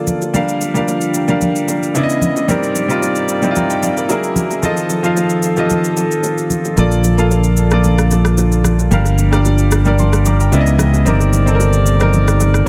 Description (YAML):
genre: amapiano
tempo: 112 BPM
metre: 4/4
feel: straight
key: unclear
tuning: A4 = 440 Hz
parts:
  - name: clear baby grand piano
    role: accompaniment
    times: 0.0-12.7 s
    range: C#3 to D6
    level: -19 LUFS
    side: equal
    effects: analog delay
  - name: warm brass ensemble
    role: sustained chords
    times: 0.0-12.7 s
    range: G2 to D#5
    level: -23 LUFS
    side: equal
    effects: none
  - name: electronic shaker and rim click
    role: drums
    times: 0.1-12.7 s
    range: none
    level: -26 LUFS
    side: equal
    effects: overdrive, analog delay
  - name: congas and bongos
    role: percussion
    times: 0.1-12.7 s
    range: none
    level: -24 LUFS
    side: equal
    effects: none
  - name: modern bright fingered electric bass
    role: bass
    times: 6.8-12.7 s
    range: G1 to C#2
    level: -15 LUFS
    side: equal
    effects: none
room: light reverb, digital ambience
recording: echo-heavy mix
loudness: -14 LUFS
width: mono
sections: 0.0-12.7 A section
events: none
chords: 0.3 Gm7; 2.0 C#m9; 2.5 Cm9/G; 4.1 F#9; 4.6 F7; 6.8 Bbmaj7; 8.9 Gm7; 10.5 C#m9; 11.1 Cm9/G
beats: | 0.34 0.88 1.42 1.95 | 2.49 3.02 3.56 4.09 | 4.63 5.17 5.70 6.24 | 6.77 7.31 7.84 8.38 | 8.92 9.45 9.99 10.52 | 11.06 11.60 12.13 12.67